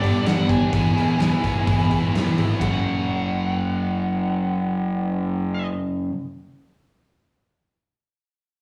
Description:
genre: quiet-loud alternative rock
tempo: 127 BPM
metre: 4/4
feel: straight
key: F# minor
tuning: A4 = 440 Hz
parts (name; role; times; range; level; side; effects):
- biting lead guitar; melody; 0.0-5.7 s; D5 to G#5; -32 LUFS; equal; overdrive, slapback echo
- picked swing-style acoustic guitar; arpeggios; 0.0-6.1 s; E2 to A4; -38 LUFS; equal; none
- biting overdriven guitar; riff; 0.0-6.1 s; F#2 to E4; -26 LUFS; equal; none
- fuzz picked electric bass; bass; 0.0-5.7 s; E1 to G#1; -28 LUFS; equal; overdrive
- huge arena drum kit; drums; 0.0-2.7 s; crash cymbal, hi-hat, kick drum, snare drum; -26 LUFS; equal; none
room: light reverb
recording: live gig heard through the venue's PA, club reverb, small room ambience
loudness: -22 LUFS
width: mono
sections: 0.0-2.6 A section; 2.6-6.4 B section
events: none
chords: 0.0 G; 0.7 E; 2.6 F#m

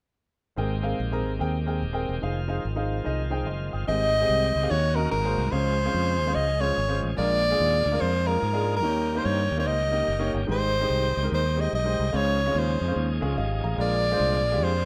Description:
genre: uptempo gospel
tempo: 145 BPM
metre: 4/4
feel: swing 63% on 8ths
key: Ab major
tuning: A4 = 441 Hz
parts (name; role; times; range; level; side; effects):
- warm concert grand piano; accompaniment; 0.6-14.7 s; Ab2 to Eb6; -32 LUFS; equal; none
- bright tonewheel organ; sustained chords; 0.6-14.9 s; Eb3 to Ab4; -38 LUFS; equal; fast rotary speaker, overdrive
- fingered electric bass; bass; 0.6-14.9 s; Eb1 to Ab2; -30 LUFS; equal; none
- clear soprano saxophone; melody; 3.9-14.9 s; Bb4 to Eb5; -28 LUFS; equal; none
room: light reverb, studio ambience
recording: rough home demo mix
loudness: -25 LUFS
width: mono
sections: 0.6-3.9 A section; 3.9-14.9 B section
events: grand piano fill 3.3-3.9, 13.2-13.8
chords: 0.6 Abmaj9; 2.2 Fm7; 3.9 Abmaj7; 4.7 Ebm7; 5.1 Ab9; 5.5 Dbmaj7; 7.2 Bb7; 8.8 Eb7; 10.5 Abmaj7; 12.1 Dbmaj7; 13.8 Bb7

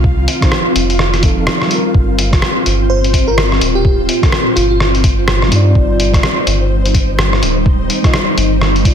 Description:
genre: future garage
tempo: 126 BPM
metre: 4/4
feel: swing 61% on 16ths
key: G minor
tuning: A4 = 440 Hz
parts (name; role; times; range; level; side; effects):
- ethereal airy pad; sustained chords; 0.0-8.9 s; Bb2 to F4; -18 LUFS; equal; ensemble chorus, built-in reverb, sidechain pumping
- warm sub bass; bass; 0.0-8.9 s; D1 to G2; -15 LUFS; equal; sidechain pumping
- electronic kick drum; drums; 0.0-8.9 s; none; -13 LUFS; equal; none
- flickering grainy texture; texture; 0.0-8.9 s; C4 to F5; -26 LUFS; equal; built-in reverb
- lo-fi sampler-style drum kit; drums; 0.3-8.9 s; hi-hat, rim click; -16 LUFS; equal; soft clipping on snare
- muted felt-like synth keys; accompaniment; 0.4-8.9 s; F3 to Eb5; -21 LUFS; right 1 dB; chorus, vintage 12-bit sampler grit, sidechain pumping, ping-pong delay
- bell-like FM electric piano; melody; 2.9-4.8 s; F4 to C5; -19 LUFS; equal; chorus, ping-pong delay
room: light reverb, digital ambience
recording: dense, heavily limited modern master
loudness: -10 LUFS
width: side -8 dB against mid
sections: 0.0-8.9 A section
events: none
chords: 0.0 F7; 1.9 Gm9; 5.8 Ebmaj7

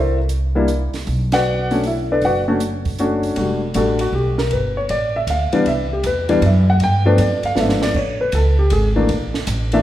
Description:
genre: jazz piano trio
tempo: 157 BPM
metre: 3/4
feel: swing 66% on 8ths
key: B minor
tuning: A4 = 444 Hz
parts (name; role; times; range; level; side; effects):
- warm baby grand piano; melody; 0.0-9.8 s; E3 to G5; -18 LUFS; left 1 dB; none
- upright bass; bass; 0.0-9.8 s; E1 to G2; -19 LUFS; right 1 dB; none
- compact cocktail drum kit; drums; 0.3-9.8 s; crash cymbal, hi-hat, kick drum, ride cymbal, snare drum; -28 LUFS; right 3 dB; none
room: wet recital hall reverb, RT60 1.4 s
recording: recorded in a church or concert hall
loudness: -15 LUFS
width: side -13 dB against mid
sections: 0.0-3.4 A section; 3.4-9.8 B section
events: band accent 1.3; drum fill 7.6-8.0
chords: 0.0 C7; 1.1 Bm7; 3.4 Em11; 4.5 G69; 5.7 Cmaj7; 6.8 G9; 8.0 Amaj7; 9.1 A5

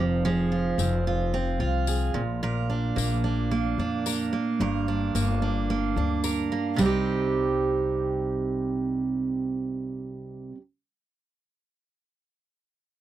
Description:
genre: acoustic pop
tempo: 110 BPM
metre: 4/4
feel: straight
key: C minor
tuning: A4 = 440 Hz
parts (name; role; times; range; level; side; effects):
- picked steel-string acoustic guitar; accompaniment; 0.0-10.6 s; G2 to Bb4; -25 LUFS; right 4 dB; none
- upright bass; bass; 0.0-10.5 s; F1 to F2; -30 LUFS; left 3 dB; none
- tambourine; percussion; 0.8-7.0 s; none; -35 LUFS; left 28 dB; none
room: little or no reverb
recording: dry, close 1970s-style studio recording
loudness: -24 LUFS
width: side -12 dB against mid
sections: 0.0-6.8 A section; 6.8-11.1 B section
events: none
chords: 0.0 Fm; 2.1 Bb; 4.6 Gm; 6.8 Cm

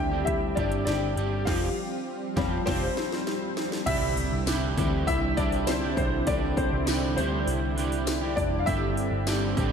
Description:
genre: piano-driven pop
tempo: 100 BPM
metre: 4/4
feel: straight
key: C major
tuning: A4 = 442 Hz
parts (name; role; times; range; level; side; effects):
- warm grand piano; accompaniment; 0.0-9.7 s; D3 to G5; -30 LUFS; left 2 dB; ensemble chorus
- warm analog pad; sustained chords; 0.0-9.7 s; D3 to G4; -33 LUFS; equal; chorus
- electric guitar at the edge of break-up; riff; 0.0-9.7 s; G2 to G4; -32 LUFS; right 6 dB; analog chorus
- vintage muted picked electric bass; bass; 0.0-9.7 s; F1 to D2; -30 LUFS; equal; none
- swell and impact; sound effects; 3.3-6.3 s; none; -40 LUFS; equal; none
- house drum kit; drums; 0.3-9.7 s; crash cymbal, hi-hat, kick drum, snare drum; -31 LUFS; equal; overdrive
- tambourine; percussion; 4.5-9.4 s; none; -40 LUFS; left 11 dB; none
room: moderate lush hall reverb, RT60 2.7 s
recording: dreamy mix soaked in reverb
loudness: -24 LUFS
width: side -7 dB against mid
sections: 0.0-3.9 A section; 3.9-9.7 B section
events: grand piano solo 0.0-3.9, 3.9-9.7; drum fill 1.5-3.9; band accent 1.5-3.9; swell 3.3-3.9; impact 3.9-6.3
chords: 0.0 Gsus4; 1.5 Fsus2; 3.9 Cadd9; 8.7 Gsus4

